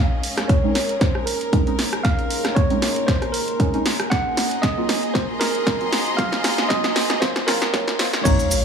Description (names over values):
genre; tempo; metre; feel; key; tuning
deep house; 116 BPM; 4/4; swing 54% on 16ths; Bb minor; A4 = 440 Hz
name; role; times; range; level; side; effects
bell-like tine electric piano; melody; 0.0-8.6 s; Bb4 to Gb5; -25 LUFS; right 2 dB; low-pass filter, tape echo
deep dark ambient pad; sustained chords; 0.2-8.6 s; Bb3 to C6; -29 LUFS; equal; chorus, built-in reverb, vintage 12-bit sampler grit, sidechain pumping
warm sub bass; bass; 0.0-8.6 s; Ab1 to Bb2; -29 LUFS; equal; none
clear symphonic string section; texture; 0.0-8.6 s; Db4 to C6; -29 LUFS; left 1 dB; sidechain pumping
punchy analog drum machine; drums; 0.2-8.6 s; crash cymbal, hi-hat, rim click, snare drum; -23 LUFS; right 1 dB; overdrive
electronic kick drum; drums; 0.5-8.4 s; none; -20 LUFS; equal; none
deep mellow chord stab; stabs; 0.6-8.6 s; F3 to F4; -27 LUFS; right 1 dB; chorus, phaser, sidechain pumping, tape echo
cabasa; percussion; 8.3-8.6 s; none; -27 LUFS; right 2 dB; none
sub drop; sound effects; 8.3-8.6 s; none; -25 LUFS; left 1 dB; none
room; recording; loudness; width
light reverb; high-pass filter, studio reverb; -18 LUFS; side -6 dB against mid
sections
0.0-8.3 A section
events
build-up 0.0-8.3; drum fill 0.0-8.3; filter sweep on tine electric piano 0.0-8.3; filter sweep 0.0-8.3; impact 8.3-8.6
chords
0.0 Bbm11; 4.1 Ab13; 8.0 Bbm11